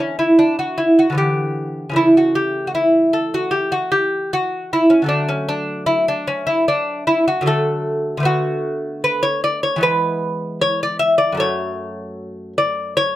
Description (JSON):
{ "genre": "classical, baroque-style dance for lute", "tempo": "76 BPM", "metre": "4/4", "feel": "rubato", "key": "D major", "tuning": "A4 = 439 Hz", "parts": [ { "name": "lute", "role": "solo", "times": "0.0-13.2 s", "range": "F#2 to E5", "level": "-16 LUFS", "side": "equal", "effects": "none" } ], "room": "light reverb", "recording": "none", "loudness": "-16 LUFS", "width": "side -14 dB against mid", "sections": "0.0-13.2 A section", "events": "none", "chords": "0.0 Em7/D; 2.0 A/C#; 5.1 D; 8.3 Bm7/D; 9.8 E; 11.4 F#m", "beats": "0.39 1.18 | 1.97 2.76 3.55 4.33 | 5.12 5.90 6.68 7.47 | 8.26 9.05 9.84 10.62 | 11.40 12.18 12.96" }